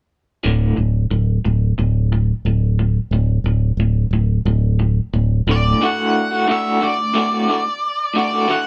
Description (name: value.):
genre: rock.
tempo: 90 BPM.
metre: 4/4.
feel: straight.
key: D major.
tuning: A4 = 439 Hz.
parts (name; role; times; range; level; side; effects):
electric guitar through a small old amp; arpeggios; 0.4-8.7 s; D2 to F#4; -22 LUFS; equal; tremolo.
fingered electric bass; bass; 0.5-5.7 s; D1; -18 LUFS; equal; none.
octave-fuzz lead guitar; melody; 5.5-8.7 s; D5 to F#5; -23 LUFS; equal; distortion.
room: light reverb.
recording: band playing live in one room.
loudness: -18 LUFS.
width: mono.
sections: 0.4-5.8 A section; 5.8-8.7 B section.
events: none.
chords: 0.4 D5; 5.8 D.